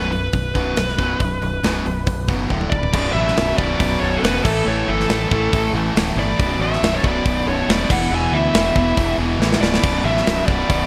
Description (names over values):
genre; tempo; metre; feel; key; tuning
hard rock; 139 BPM; 4/4; straight; B minor; A4 = 440 Hz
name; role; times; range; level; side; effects
bluesy overdriven lead guitar; melody; 0.0-10.9 s; A4 to G#5; -25 LUFS; equal; distortion, delay
cranked stack guitar; riff; 0.0-10.9 s; B1 to A3; -27 LUFS; equal; overdrive
distorted electric guitar; riff; 0.0-10.9 s; B1 to A3; -29 LUFS; equal; overdrive
growling fingered electric bass; bass; 0.0-10.9 s; B0 to D2; -26 LUFS; equal; overdrive
tight metal drum kit; drums; 0.1-10.8 s; crash cymbal, hi-hat, kick drum, snare drum, toms; -24 LUFS; equal; gated reverb
octave-fuzz lead guitar; second line; 2.7-10.9 s; E4 to E5; -32 LUFS; equal; distortion, delay
heavy high-gain guitar; riff; 2.9-10.9 s; B1 to A3; -31 LUFS; equal; none
room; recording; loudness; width
moderate lush hall reverb, RT60 1.8 s, studio ambience; bright 1980s-style digital production; -19 LUFS; mono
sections
0.0-2.9 A section; 2.9-10.9 B section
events
drum fill 2.5-2.9, 9.4-9.8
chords
0.0 B5; 2.5 D5; 2.9 Bm; 4.5 A5; 6.4 Bm; 7.9 E5; 9.8 Bm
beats
0.34 0.78 | 1.21 1.64 2.08 2.51 | 2.94 3.37 3.81 4.24 | 4.67 5.10 5.53 5.96 | 6.39 6.82 7.25 7.68 | 8.12 8.54 8.97 9.40 | 9.83 10.26 10.69